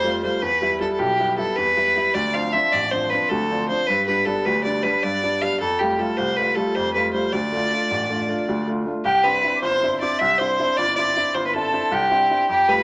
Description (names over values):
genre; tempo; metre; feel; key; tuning
celtic folk; 104 BPM (dotted quarters); 9/8; straight; unclear; A4 = 440 Hz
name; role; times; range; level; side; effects
clear fiddle; melody; 0.0-12.8 s; G4 to F5; -22 LUFS; equal; none
clear upright piano; accompaniment; 0.0-12.8 s; G1 to F4; -26 LUFS; equal; none
bright reedy mid whistle; second line; 9.1-12.8 s; G5 to E6; -31 LUFS; equal; none
room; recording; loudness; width
wet club reverb, RT60 0.7 s; none; -21 LUFS; mono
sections
0.0-9.1 A section; 9.1-12.8 B section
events
none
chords
0.4 Em; 2.2 Dm7; 3.9 G; 5.6 Fadd9; 7.3 Dm; 9.1 Cadd9